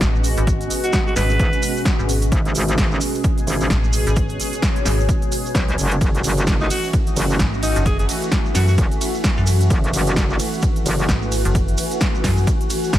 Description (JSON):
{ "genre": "bass house", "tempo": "130 BPM", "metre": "4/4", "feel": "swing 58% on 16ths", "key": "G# phrygian", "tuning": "A4 = 443 Hz", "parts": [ { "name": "sweeping resonant pad", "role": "sustained chords", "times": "0.0-13.0 s", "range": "B2 to G#4", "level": "-27 LUFS", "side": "equal", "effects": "chorus, sidechain pumping" }, { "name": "metallic FM bass", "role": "bass", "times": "0.0-13.0 s", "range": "F#1 to F#2", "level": "-19 LUFS", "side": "equal", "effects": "overdrive, sidechain pumping" }, { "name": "big-room dance drum kit", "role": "drums", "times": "0.0-13.0 s", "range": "hi-hat, ride cymbal, snare drum", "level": "-26 LUFS", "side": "equal", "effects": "overdrive" }, { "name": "electronic kick drum", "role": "drums", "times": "0.0-13.0 s", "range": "none", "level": "-20 LUFS", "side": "equal", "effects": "overdrive" }, { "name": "maracas", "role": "percussion", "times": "0.0-13.0 s", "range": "none", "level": "-31 LUFS", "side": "right 3 dB", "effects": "none" }, { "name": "granular cloud pad", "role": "texture", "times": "0.0-13.0 s", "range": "C#4 to E5", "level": "-28 LUFS", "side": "equal", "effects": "built-in reverb, lush chorus, sidechain pumping" }, { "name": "raspy alto saxophone", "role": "melody", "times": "0.8-1.8, 6.6-8.7 s", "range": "D#4 to B4", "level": "-26 LUFS", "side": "equal", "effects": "analog delay" }, { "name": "metallic wobble bass", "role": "bass", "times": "1.4-11.1 s", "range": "F#1 to B1", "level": "-20 LUFS", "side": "equal", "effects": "chorus, sidechain pumping" } ], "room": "light reverb", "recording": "none", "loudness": "-16 LUFS", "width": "side -13 dB against mid", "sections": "0.0-13.0 A section", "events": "none", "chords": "0.0 G#m7; 6.0 F#m7" }